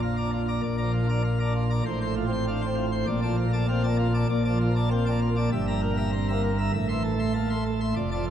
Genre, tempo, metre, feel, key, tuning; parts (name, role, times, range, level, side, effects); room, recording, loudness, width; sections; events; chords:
classical, organ toccata; 98 BPM; 4/4; straight; A4 = 440 Hz
pipe organ, plenum; solo; 0.0-8.3 s; F1 to C6; -23 LUFS; equal
wet church reverb, RT60 3.0 s; dark, warm production; -23 LUFS; side -10 dB against mid
0.0-8.3 A section
0.0 Bb; 1.9 F/A; 3.1 Bbmaj7; 5.5 Edim/G; 6.7 Am